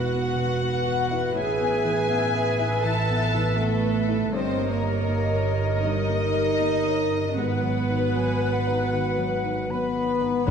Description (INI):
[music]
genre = cinematic, emotional film score for orchestra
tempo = 80 BPM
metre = 4/4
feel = rubato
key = unclear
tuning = A4 = 440 Hz
[part]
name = dark studio violin section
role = melody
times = 0.0-10.5 s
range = A4 to A5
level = -32 LUFS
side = left 5 dB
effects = none
[part]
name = clear studio violin section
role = second line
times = 0.0-10.5 s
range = A4 to A5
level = -34 LUFS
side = left 3 dB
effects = none
[part]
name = silver concert flute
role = second line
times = 0.0-10.5 s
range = D#5 to B5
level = -34 LUFS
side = left 2 dB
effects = none
[part]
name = warm clarinet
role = second line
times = 0.0-10.1 s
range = B4 to C#5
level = -34 LUFS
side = left 3 dB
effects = none
[part]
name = felt-muted upright piano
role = accompaniment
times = 0.0-10.5 s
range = E2 to C#5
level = -31 LUFS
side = left 3 dB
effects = none
[part]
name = rich studio viola section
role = accompaniment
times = 0.0-10.5 s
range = F#4 to F#5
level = -33 LUFS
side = equal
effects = none
[part]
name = mellow French horn section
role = sustained chords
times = 0.0-10.5 s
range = B3 to E5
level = -30 LUFS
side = left 4 dB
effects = none
[part]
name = dark studio double bass section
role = bass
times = 0.0-10.5 s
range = E1 to A1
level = -28 LUFS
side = right 4 dB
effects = none
[part]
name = warm studio cello section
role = bass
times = 0.0-10.5 s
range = E2 to A4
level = -29 LUFS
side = right 5 dB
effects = none
[part]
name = clear cor anglais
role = second line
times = 10.5 s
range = B4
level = -31 LUFS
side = equal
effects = none
[sound]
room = wet scoring stage reverb, RT60 1.9 s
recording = dark, warm production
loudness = -22 LUFS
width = side -7 dB against mid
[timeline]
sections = 0.0-10.5 A section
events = none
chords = 0.0 Esus2; 1.4 Asus2; 4.3 D#7/G; 7.4 G#m7